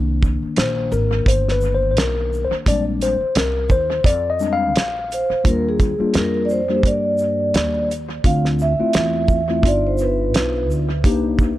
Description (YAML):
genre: hip hop, jazz-hop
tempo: 86 BPM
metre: 4/4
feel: swing 57% on 16ths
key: Eb major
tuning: A4 = 441 Hz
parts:
  - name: mellow tine electric piano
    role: accompaniment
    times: 0.0-11.5 s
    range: Eb3 to F5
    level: -21 LUFS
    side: left 4 dB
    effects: none
  - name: upright bass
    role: bass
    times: 0.0-11.6 s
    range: G1 to G2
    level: -23 LUFS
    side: right 1 dB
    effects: none
  - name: cloth-damped thuddy drum kit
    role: drums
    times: 0.2-11.6 s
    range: hi-hat, kick drum, shaker, snare drum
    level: -19 LUFS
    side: right 1 dB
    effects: dub echo
  - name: vibraphone with soft mallets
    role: melody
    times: 5.1-10.7 s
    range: Ab4 to F5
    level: -21 LUFS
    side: right 2 dB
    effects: dub echo
room: light reverb, small room ambience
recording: echo-heavy mix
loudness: -16 LUFS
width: side -15 dB against mid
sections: 0.0-5.5 A section; 5.5-11.6 B section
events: tine electric piano solo 0.0-5.5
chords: 0.0 Cm7; 2.7 Bb13; 5.5 Ebmaj7; 8.2 Dm9; 9.6 G7b13; 11.0 Cm7